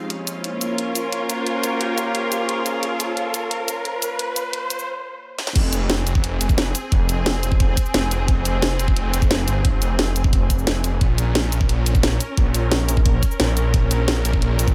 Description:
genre	dark technical drum and bass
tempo	176 BPM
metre	4/4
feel	straight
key	F minor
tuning	A4 = 440 Hz
part	sweeping resonant pad	sustained chords	0.0-5.5 s	Bb3 to Db5	-30 LUFS	equal	chorus, sidechain pumping
part	riser	sound effects	0.0-4.9 s	none	-32 LUFS	equal	none
part	clear studio string section	texture	0.0-14.7 s	Ab3 to F5	-30 LUFS	equal	sidechain pumping
part	drum and bass drum kit	drums	0.1-14.7 s	crash cymbal, hi-hat, shaker, snare drum	-25 LUFS	equal	studio reverb
part	detuned saw bass	bass	5.6-14.7 s	F1 to Bb1	-23 LUFS	equal	chorus, sidechain pumping
part	electronic kick drum	drums	5.6-14.7 s	none	-21 LUFS	equal	studio reverb
room	little or no reverb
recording	high-pass filter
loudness	-21 LUFS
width	mono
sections	0.0-5.6 A section; 5.6-14.7 B section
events	build-up 0.0-5.6; riser 0.0-4.9; break 4.9-5.6; drum fill 5.4; drop 5.6-14.7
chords	0.1 Bbm; 5.6 Fm; 11.0 Bbm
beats	| 0.10 0.44 0.78 1.12 | 1.47 1.81 2.15 2.49 | 2.83 3.17 3.51 3.85 | 4.19 4.53 4.87 5.21 | 5.56 5.90 6.24 6.58 | 6.92 7.26 7.60 7.94 | 8.28 8.62 8.96 9.31 | 9.65 9.99 10.33 10.67 | 11.01 11.35 11.69 12.03 | 12.37 12.71 13.06 13.40 | 13.74 14.08 14.42

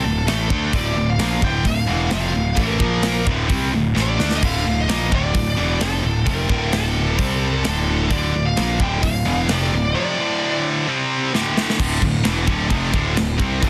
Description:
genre	heavy metal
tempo	130 BPM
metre	4/4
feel	straight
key	D minor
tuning	A4 = 444 Hz
part	high-gain lead guitar	melody	0.0-10.6 s	A4 to G5	-28 LUFS	equal	distortion, delay
part	heavy high-gain guitar	riff	0.0-13.7 s	D2 to D4	-24 LUFS	equal	distortion
part	fuzz picked electric bass	bass	0.0-13.7 s	D1 to D2	-24 LUFS	equal	overdrive
part	tight metal drum kit	drums	0.3-13.7 s	crash cymbal, hi-hat, kick drum, snare drum	-26 LUFS	equal	none
room	little or no reverb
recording	dense, heavily limited modern master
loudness	-20 LUFS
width	mono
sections	0.0-11.8 A section; 11.8-13.7 B section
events	drum fill 4.0-4.4, 11.3-11.8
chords	0.0 Dm; 2.8 Bb5; 3.3 Dm; 7.2 C5; 7.7 Dm; 10.9 C5; 11.3 D5; 11.8 Dm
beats	0.27 | 0.73 1.19 1.66 2.12 | 2.58 3.04 3.50 3.96 | 4.42 4.89 5.35 5.81 | 6.27 6.73 7.19 7.65 | 8.11 8.57 9.04 9.50 | 9.96 10.42 10.88 11.34 | 11.79 12.25 12.71 13.17 | 13.63

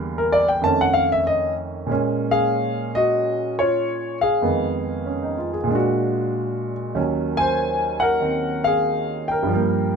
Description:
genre	solo jazz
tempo	95 BPM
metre	4/4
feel	swing 67% on 8ths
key	Bb minor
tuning	A4 = 440 Hz
part	warm concert grand piano	solo	0.0-10.0 s	Eb2 to A5	-19 LUFS	equal	none
room	light reverb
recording	minimal, uncompressed stereo recording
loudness	-19 LUFS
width	side -6 dB against mid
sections	0.0-1.9 A section; 1.9-10.0 B section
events	grand piano solo 0.0-1.9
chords	0.0 Em7b5; 0.6 F7b13; 1.9 Bbm7; 4.4 Fm7b5; 5.7 Bb7b13; 7.0 Ebm7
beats	0.62 1.25 | 1.89 2.52 3.15 3.79 | 4.42 5.05 5.69 6.32 | 6.96 7.59 8.22 8.86 | 9.49

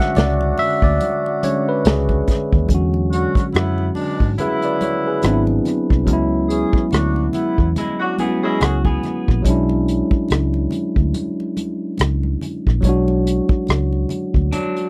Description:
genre	R&B, neo-soul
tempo	71 BPM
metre	4/4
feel	swing 59% on 16ths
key	B dorian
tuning	A4 = 438 Hz
part	bright tine electric piano	accompaniment	0.0-14.9 s	D3 to F#5	-22 LUFS	equal	none
part	mellow horn section	stabs	0.0-8.8 s	B2 to G#4	-27 LUFS	equal	none
part	unplugged drum kit	drums	0.0-14.9 s	hi-hat, kick drum, rim click, snare drum	-21 LUFS	equal	none
part	vintage muted fingered electric bass	bass	0.2-14.5 s	G#1 to G#2	-22 LUFS	equal	none
part	congas	percussion	0.2-14.9 s	none	-35 LUFS	equal	none
part	electric guitar through a small old amp	second line	7.8-9.4, 14.5-14.9 s	F#3 to G#4	-27 LUFS	equal	none
room	little or no reverb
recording	dry, close 1970s-style studio recording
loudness	-18 LUFS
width	mono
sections	0.0-2.7 A section; 2.7-14.9 B section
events	tine electric piano solo 0.0-2.7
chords	0.0 Bm69; 2.7 E13; 5.2 G#7alt; 6.1 C#m7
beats	0.15 1.00 1.84 | 2.69 3.53 4.38 5.22 | 6.07 6.91 7.76 8.60 | 9.45 10.29 11.14 11.98 | 12.83 13.67 14.52

